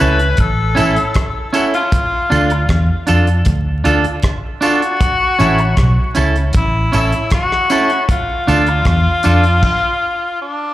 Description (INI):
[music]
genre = roots reggae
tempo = 78 BPM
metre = 4/4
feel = straight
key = unclear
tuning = A4 = 440 Hz
[part]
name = clear tenor saxophone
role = melody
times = 0.0-10.7 s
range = D4 to B4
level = -17 LUFS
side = left 2 dB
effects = tape echo, slapback echo
[part]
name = clean electric guitar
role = accompaniment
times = 0.0-9.4 s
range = C#4 to A4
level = -18 LUFS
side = right 2 dB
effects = spring reverb, tape echo, slapback echo
[part]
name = vintage muted fingered electric bass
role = bass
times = 0.0-9.6 s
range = A1 to F2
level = -14 LUFS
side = equal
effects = none
[part]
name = damped 70s drum kit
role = drums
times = 0.2-9.8 s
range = crash cymbal, hi-hat, kick drum, rim click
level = -18 LUFS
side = equal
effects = tape echo
[part]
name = tambourine and woodblock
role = percussion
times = 0.8-9.4 s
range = none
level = -31 LUFS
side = right 4 dB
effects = slapback echo
[sound]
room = light reverb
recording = live gig heard through the venue's PA, club reverb, vinyl crackle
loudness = -12 LUFS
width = side -14 dB against mid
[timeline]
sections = 0.0-10.7 A section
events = stop 9.6-10.7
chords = 0.0 A; 1.9 Dm; 5.0 A; 8.1 Dm